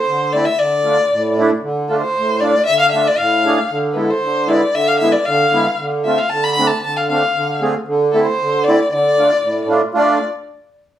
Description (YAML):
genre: klezmer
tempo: 115 BPM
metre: 2/4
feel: straight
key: D dorian sharp4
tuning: A4 = 440 Hz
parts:
  - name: rich violin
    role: melody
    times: 0.0-10.2 s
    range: A4 to B5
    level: -16 LUFS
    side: left 2 dB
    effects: plate reverb
  - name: accordion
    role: accompaniment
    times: 0.1-10.2 s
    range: A2 to G#4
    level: -17 LUFS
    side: right 2 dB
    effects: light tremolo tuning
room: wet studio reverb, RT60 0.6 s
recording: heard from further back in the room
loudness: -13 LUFS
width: side -11 dB against mid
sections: 0.0-1.6 A section; 1.6-9.9 A section; 9.9-11.0 B section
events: none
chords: 0.0 Am/D; 0.6 Dm; 3.7 E/D; 5.8 F/D; 7.9 Am/D; 8.9 Dm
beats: 0.06 | 0.58 1.11 | 1.63 2.15 | 2.67 3.19 | 3.71 4.24 | 4.76 5.28 | 5.80 6.32 | 6.84 7.36 | 7.87 8.39 | 8.91 9.43 | 9.94